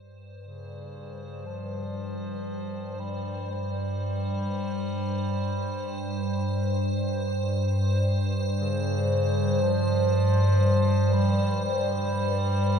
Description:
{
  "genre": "dark ambient drone",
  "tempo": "free time",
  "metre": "none",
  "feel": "none",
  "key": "unclear",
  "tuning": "A4 = 442 Hz",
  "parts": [
    { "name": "organ-like drone", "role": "drone", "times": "0.1-12.8 s", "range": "G2", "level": "-26 LUFS", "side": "equal", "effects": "ensemble chorus, built-in reverb" },
    { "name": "icy glass pad", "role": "texture", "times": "0.3-12.8 s", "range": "C5", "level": "-32 LUFS", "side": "right 1 dB", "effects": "chorus, built-in reverb, shimmer reverb" },
    { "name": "clear bass clarinet", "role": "melody", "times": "0.4-12.8 s", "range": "Db3 to G3", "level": "-33 LUFS", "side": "right 1 dB", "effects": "shimmer reverb, tape echo" }
  ],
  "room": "wet cathedral reverb, RT60 6.8 s",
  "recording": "dark, warm production",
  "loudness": "-24 LUFS",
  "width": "side -7 dB against mid",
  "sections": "0.0-12.8 A section",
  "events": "fade-in on synth drone 0.0-12.8; fade-in on ambient pad 0.0-12.8; fade-in on bass clarinet 0.0-12.8",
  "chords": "0.0 C5"
}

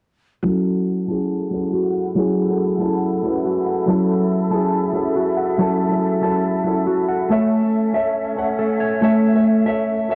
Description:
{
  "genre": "hip hop",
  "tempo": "140 BPM",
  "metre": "4/4",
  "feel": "half-time",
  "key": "F# minor",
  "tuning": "A4 = 440 Hz",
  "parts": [
    { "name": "dark concert grand piano", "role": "accompaniment", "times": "0.4-10.2 s", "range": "F#3 to F#5", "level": "-23 LUFS", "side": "equal", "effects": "low-pass filter, cassette tape" },
    { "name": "large flute ensemble", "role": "sustained chords", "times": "0.4-10.2 s", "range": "C#4 to F#5", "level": "-30 LUFS", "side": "equal", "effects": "low-pass filter, cassette tape" },
    { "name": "mellow electric guitar", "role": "arpeggios", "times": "0.4-10.2 s", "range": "F#3 to A5", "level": "-22 LUFS", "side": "equal", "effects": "low-pass filter, cassette tape, analog delay" }
  ],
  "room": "moderate spring reverb, RT60 1.5 s, studio reverb",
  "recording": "home recording on cassette",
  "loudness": "-19 LUFS",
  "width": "mono",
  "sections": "0.4-10.2 A section",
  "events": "filter sweep 0.4-10.2",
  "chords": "0.4 F#m7; 7.3 A"
}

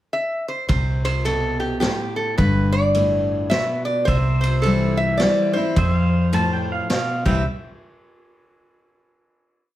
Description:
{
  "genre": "honky-tonk and classic country",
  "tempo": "107 BPM",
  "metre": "3/4",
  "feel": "swing 64% on 8ths",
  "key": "C major",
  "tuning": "A4 = 439 Hz",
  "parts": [
    { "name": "lap resonator guitar", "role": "melody", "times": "0.1-7.4 s", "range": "G4 to E5", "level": "-23 LUFS", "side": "equal", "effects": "none" },
    { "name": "picked steel-string acoustic guitar", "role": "accompaniment", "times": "0.7-7.4 s", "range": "F2 to E4", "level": "-23 LUFS", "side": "left 2 dB", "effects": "none" },
    { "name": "vintage muted fingered electric bass", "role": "bass", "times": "0.7-7.4 s", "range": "G1 to F2", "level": "-22 LUFS", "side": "equal", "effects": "none" },
    { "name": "vintage drum kit", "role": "drums", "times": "0.7-7.4 s", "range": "crash cymbal, kick drum, ride cymbal, snare drum", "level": "-26 LUFS", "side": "equal", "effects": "none" },
    { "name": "pedal steel guitar", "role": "sustained chords", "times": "4.1-7.2 s", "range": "C5 to F5", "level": "-30 LUFS", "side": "right 2 dB", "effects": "none" },
    { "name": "pedal steel guitar", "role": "second line", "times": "6.3-7.4 s", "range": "E5 to A5", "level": "-25 LUFS", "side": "right 2 dB", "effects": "none" }
  ],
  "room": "wet studio reverb, RT60 0.8 s",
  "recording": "heard from further back in the room",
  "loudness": "-18 LUFS",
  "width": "side -14 dB against mid",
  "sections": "0.0-0.7 pickup bar; 0.7-7.5 verse; 7.5-9.1 final hit",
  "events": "none",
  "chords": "0.0 N.C.; 0.7 Am9/C; 2.4 G; 4.1 C; 5.8 F; 7.2 C; 7.5 N.C."
}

